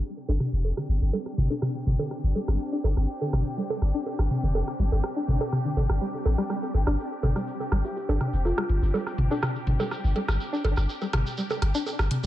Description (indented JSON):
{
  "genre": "minimal techno",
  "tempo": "123 BPM",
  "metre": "4/4",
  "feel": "straight",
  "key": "unclear",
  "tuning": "A4 = 440 Hz",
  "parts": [
    { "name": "muted studio string section", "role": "texture", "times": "0.0-12.3 s", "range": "D4 to G5", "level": "-38 LUFS", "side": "left 2 dB", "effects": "none" },
    { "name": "swarming drone", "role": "texture", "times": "0.1-12.3 s", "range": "C4", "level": "-40 LUFS", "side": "left 2 dB", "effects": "built-in reverb" },
    { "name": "string-like resonator pluck", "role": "riff", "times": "0.3-12.3 s", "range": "D3 to D4", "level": "-33 LUFS", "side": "left 1 dB", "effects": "chorus, tape echo" },
    { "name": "punchy sub bass", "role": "bass", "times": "0.3-12.3 s", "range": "F1 to A1", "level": "-24 LUFS", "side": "equal", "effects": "none" },
    { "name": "booming analog drum machine", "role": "percussion", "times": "0.3-12.2 s", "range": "bongos, rim click, toms", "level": "-30 LUFS", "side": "right 1 dB", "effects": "small room ambience, dub echo" },
    { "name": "electronic hi-hat", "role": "drums", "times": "0.4-12.2 s", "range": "none", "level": "-39 LUFS", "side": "left 1 dB", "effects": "small room ambience" },
    { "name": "shekere", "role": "percussion", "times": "6.5-12.3 s", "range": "none", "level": "-41 LUFS", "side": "right 3 dB", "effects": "dub echo" },
    { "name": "kalimba", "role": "melody", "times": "7.8-8.9 s", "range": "F4 to G4", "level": "-35 LUFS", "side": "equal", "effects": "dub echo" }
  ],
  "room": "light reverb, digital ambience",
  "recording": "echo-heavy mix, low-pass filter",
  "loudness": "-24 LUFS",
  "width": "side -14 dB against mid",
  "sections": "0.0-12.3 A section",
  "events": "filter sweep on synth pluck 0.0-12.3; filter sweep 0.0-12.3",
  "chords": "0.0 G5"
}